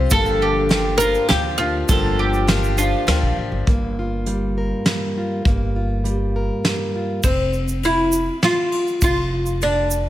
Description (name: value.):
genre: indie folk with a building arrangement.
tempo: 101 BPM.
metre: 3/4.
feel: straight.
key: unclear.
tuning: A4 = 440 Hz.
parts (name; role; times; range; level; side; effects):
picked steel-string acoustic guitar; accompaniment; 0.0-3.7 s; G2 to G4; -24 LUFS; left 6 dB; none.
upright bass; bass; 0.0-10.0 s; F1 to D2; -23 LUFS; equal; none.
oud; melody; 0.1-3.3, 7.2-10.1 s; C4 to Bb4; -20 LUFS; equal; none.
mandolin; arpeggios; 0.1-3.4 s; F4 to A4; -24 LUFS; right 6 dB; none.
soft brush drum kit; drums; 0.1-9.8 s; hi-hat, kick drum, ride cymbal, snare drum; -22 LUFS; equal; none.
tube shaker; percussion; 0.1-2.9, 7.2-10.0 s; none; -29 LUFS; right 6 dB; none.
fingerpicked plugged-in steel-string acoustic guitar; accompaniment; 3.7-7.2 s; G2 to Bb4; -24 LUFS; equal; none.
room: light reverb, small room reverb.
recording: none.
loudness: -17 LUFS.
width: side -13 dB against mid.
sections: 0.0-3.7 A section; 3.7-7.2 B section; 7.2-10.1 C section.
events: none.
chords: 0.1 Gm7; 7.2 F5.